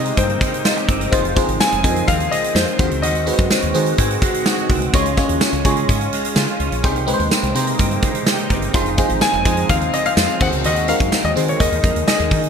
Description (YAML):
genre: 1980s-style pop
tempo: 126 BPM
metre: 4/4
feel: straight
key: Ab major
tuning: A4 = 440 Hz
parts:
  - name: clear concert grand piano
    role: melody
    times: 0.0-4.7, 9.2-12.5 s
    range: C5 to Ab5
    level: -21 LUFS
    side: left 3 dB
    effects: ping-pong delay
  - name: FM electric piano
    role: accompaniment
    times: 0.0-12.5 s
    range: Ab3 to Eb5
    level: -22 LUFS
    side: left 1 dB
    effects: chorus, phaser
  - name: sweeping resonant pad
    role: sustained chords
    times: 0.0-12.5 s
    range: C3 to Ab4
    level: -27 LUFS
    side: right 2 dB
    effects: chorus
  - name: direct-recorded clean electric guitar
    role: riff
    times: 0.0-12.5 s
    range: Eb3 to Ab4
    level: -26 LUFS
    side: right 5 dB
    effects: ensemble chorus, ping-pong delay
  - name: woody fretless electric bass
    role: bass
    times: 0.0-12.5 s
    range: F1 to Eb3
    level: -23 LUFS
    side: equal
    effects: none
  - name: big rock drum kit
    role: drums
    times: 0.1-12.5 s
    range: crash cymbal, hi-hat, kick drum, snare drum, tambourine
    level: -19 LUFS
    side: equal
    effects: gated reverb
  - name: marimba with medium mallets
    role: second line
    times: 0.7-5.8 s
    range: Eb4 to Eb5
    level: -29 LUFS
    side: left 5 dB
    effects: ping-pong delay
room: moderate plate reverb, RT60 1.2 s, small room ambience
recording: bright 1980s-style digital production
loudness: -15 LUFS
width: side -7 dB against mid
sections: 0.0-12.5 A section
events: none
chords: 0.0 Abmaj7; 1.1 Fm7; 2.8 Ab7; 4.9 Db; 6.8 Abmaj7/C; 8.7 Fm7; 10.4 Ab7; 11.6 Ebsus4